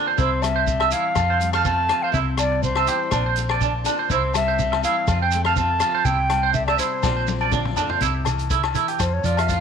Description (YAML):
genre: highlife guitar band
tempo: 123 BPM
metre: 4/4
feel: swing 54% on 16ths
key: C mixolydian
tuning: A4 = 440 Hz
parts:
  - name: picked steel-string acoustic guitar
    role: accompaniment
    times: 0.0-9.6 s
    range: F2 to G4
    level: -31 LUFS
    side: left 12 dB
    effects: none
  - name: twangy electric guitar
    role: arpeggios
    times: 0.0-9.6 s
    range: D4 to F5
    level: -24 LUFS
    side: right 15 dB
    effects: tremolo, slapback echo
  - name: concert flute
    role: melody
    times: 0.2-9.6 s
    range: C5 to A5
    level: -24 LUFS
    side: equal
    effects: none
  - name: hollow-body short-scale fingered electric bass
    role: bass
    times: 0.2-9.6 s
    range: Bb1 to F2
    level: -25 LUFS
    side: equal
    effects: none
  - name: vintage drum kit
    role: drums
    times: 0.2-9.6 s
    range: hi-hat, kick drum, rim click, snare drum, toms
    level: -29 LUFS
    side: left 3 dB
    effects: none
  - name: shekere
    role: percussion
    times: 0.2-9.6 s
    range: none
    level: -30 LUFS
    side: right 8 dB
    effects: none
  - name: agogo bells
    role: percussion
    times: 0.4-9.5 s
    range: none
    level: -28 LUFS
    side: left 16 dB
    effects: none
room: light reverb, small room ambience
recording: 1960s-style stereo with parts hard left and right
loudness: -18 LUFS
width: side -7 dB against mid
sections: 0.0-8.0 A section; 8.0-9.6 B section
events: drum fill 7.0-8.0; flute solo 8.0-9.6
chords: 0.2 C; 1.2 F; 2.1 C; 3.1 Bbadd9; 4.1 C; 5.1 F; 6.1 C; 7.0 Bbadd9; 8.0 C; 9.0 F